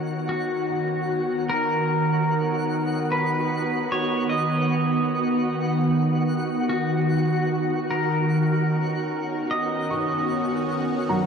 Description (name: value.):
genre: ambient.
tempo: 75 BPM.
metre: 4/4.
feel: straight.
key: B major.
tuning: A4 = 438 Hz.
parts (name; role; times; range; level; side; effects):
soft additive organ-like pad; sustained chords; 0.0-11.3 s; D#3 to C#5; -24 LUFS; right 1 dB; ensemble chorus, built-in reverb.
bowed-like drone; drone; 0.0-1.6, 9.3-11.3 s; B3 to F#4; -34 LUFS; left 4 dB; built-in reverb, phaser.
twinkling granular texture; texture; 0.0-11.3 s; F#4 to F#5; -32 LUFS; equal; built-in reverb.
pedal steel guitar; melody; 0.3-11.3 s; F#4 to D#5; -26 LUFS; left 1 dB; tape echo.
felt-muted upright piano; arpeggios; 0.7-2.1, 9.9-11.3 s; F#3 to C#6; -30 LUFS; right 1 dB; tape echo.
room: wet huge ambient reverb, RT60 8.2 s.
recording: dark, warm production.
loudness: -21 LUFS.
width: side -6 dB against mid.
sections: 0.0-1.5 A section; 1.5-11.3 B section.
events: none.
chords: 0.0 D#m7; 1.5 B; 7.9 D#m7.